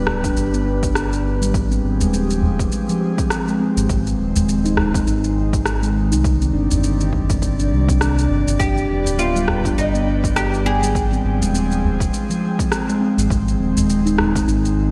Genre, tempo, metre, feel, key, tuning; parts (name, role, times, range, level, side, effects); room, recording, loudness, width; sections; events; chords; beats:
organic downtempo; 102 BPM; 4/4; swing 58% on 16ths; A4 = 438 Hz
airy breathy pad; sustained chords; 0.0-14.9 s; C3 to G5; -29 LUFS; equal; chorus, sidechain pumping
steel tongue drum; arpeggios; 0.0-14.9 s; F3 to Eb4; -23 LUFS; equal; low-pass filter, delay
round analog bass; bass; 0.0-14.9 s; D1 to C2; -23 LUFS; equal
bronze singing bowl; texture; 0.0-14.9 s; B4; -39 LUFS; equal
electronic rim click and shaker; drums; 0.1-14.8 s; -29 LUFS; equal; overdrive, studio reverb, gated reverb
udu; percussion; 0.1-14.3 s; -26 LUFS; equal
electronic kick drum; drums; 0.2-14.5 s; -26 LUFS; equal; overdrive, studio reverb
oud; melody; 8.6-11.8 s; Eb4 to Ab4; -25 LUFS; equal; delay
moderate lush hall reverb, RT60 2.6 s; bright 1980s-style digital production; -19 LUFS; mono
0.0-14.9 A section
0.0 G; 1.5 Fm7; 3.9 Ab; 6.2 Cmadd9; 8.6 G; 11.0 Fm7; 13.3 Ab
0.36 0.95 | 1.54 2.13 2.72 3.31 | 3.89 4.48 5.07 5.66 | 6.25 6.83 7.42 8.01 | 8.60 9.19 9.78 10.37 | 10.95 11.54 12.13 12.72 | 13.31 13.89 14.48